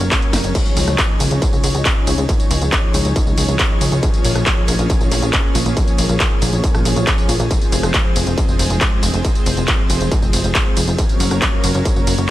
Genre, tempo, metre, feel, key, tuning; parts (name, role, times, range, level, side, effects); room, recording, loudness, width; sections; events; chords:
uplifting trance; 138 BPM; 4/4; straight; Db major; A4 = 440 Hz
lush unison pad; sustained chords; 0.0-12.3 s; F3 to Db5; -22 LUFS; left 1 dB; chorus, sidechain pumping
plucky analog bass; bass; 0.0-12.3 s; F1 to Db2; -18 LUFS; equal; sidechain pumping
techno drum kit; drums; 0.0-12.3 s; crash cymbal, handclaps, hi-hat, ride cymbal, rim click, snare drum, tambourine; -20 LUFS; equal; sidechain pumping on hats, sidechain pumping on cymbals, sidechain pumping on perc
electronic kick drum; drums; 0.1-11.9 s; -17 LUFS; equal; distortion
little or no reverb; lossy compression artefacts; -14 LUFS; side -15 dB against mid
0.0-12.3 A section
drum fill 0.3
0.0 Gb; 0.6 Dbadd9; 4.0 Bbm7; 7.5 Fm; 11.0 Gb